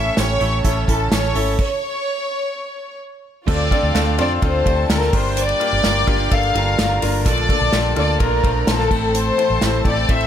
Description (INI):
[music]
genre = piano-driven pop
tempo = 127 BPM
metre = 4/4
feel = straight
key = D minor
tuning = A4 = 442 Hz
[part]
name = warm studio violin section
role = melody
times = 0.0-10.3 s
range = A4 to F5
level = -21 LUFS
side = left 2 dB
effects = none
[part]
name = warm studio violin section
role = second line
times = 0.0-10.3 s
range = F4 to C#6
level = -29 LUFS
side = left 1 dB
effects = none
[part]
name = bright concert grand piano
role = accompaniment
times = 0.0-10.3 s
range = G2 to C5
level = -24 LUFS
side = left 3 dB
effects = none
[part]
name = direct-recorded clean electric guitar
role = riff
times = 0.0-10.3 s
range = A2 to Bb4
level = -28 LUFS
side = right 12 dB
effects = none
[part]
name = vintage muted fingered electric bass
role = bass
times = 0.0-10.3 s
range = G1 to F2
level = -21 LUFS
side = equal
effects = none
[part]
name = unplugged drum kit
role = drums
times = 0.2-10.3 s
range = crash cymbal, hi-hat, kick drum, ride cymbal, snare drum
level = -21 LUFS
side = equal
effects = none
[sound]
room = light reverb, small room ambience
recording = none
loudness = -16 LUFS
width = side -9 dB against mid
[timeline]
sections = 0.0-3.5 A section; 3.5-10.3 B section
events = stop 1.6-3.5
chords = 0.0 A; 3.5 Dm7; 5.1 Gm7; 7.3 Bbmaj7; 8.9 Am